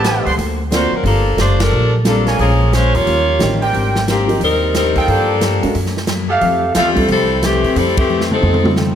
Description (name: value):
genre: jazz, big band swing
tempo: 179 BPM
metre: 4/4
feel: swing 64% on 8ths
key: F major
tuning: A4 = 439 Hz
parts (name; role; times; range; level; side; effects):
- bright saxophone section; melody; 0.0-8.8 s; Eb3 to Db5; -16 LUFS; left 2 dB; none
- picked steel-string acoustic guitar; accompaniment; 0.0-8.9 s; F2 to B4; -24 LUFS; left 4 dB; none
- warm concert grand piano; accompaniment; 0.0-8.9 s; F3 to D5; -21 LUFS; right 2 dB; none
- clear trumpet section; stabs; 0.0-6.9 s; G4 to C6; -19 LUFS; right 2 dB; none
- upright bass; bass; 0.0-8.9 s; Gb1 to C3; -18 LUFS; equal; none
- swinging big-band drum kit; drums; 0.0-8.9 s; hi-hat, kick drum, ride cymbal, snare drum, toms; -22 LUFS; right 1 dB; none
room: light reverb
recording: none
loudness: -12 LUFS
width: side -9 dB against mid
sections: 0.0-8.9 A section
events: band accent 1.6, 7.9; drum fill 8.1-8.8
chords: 0.4 D7alt; 1.1 Gm9; 2.4 Bbm7; 3.1 Eb9; 3.7 Abmaj9#11; 5.1 Gm9; 5.7 Gb9; 6.4 Fmaj9; 8.4 F7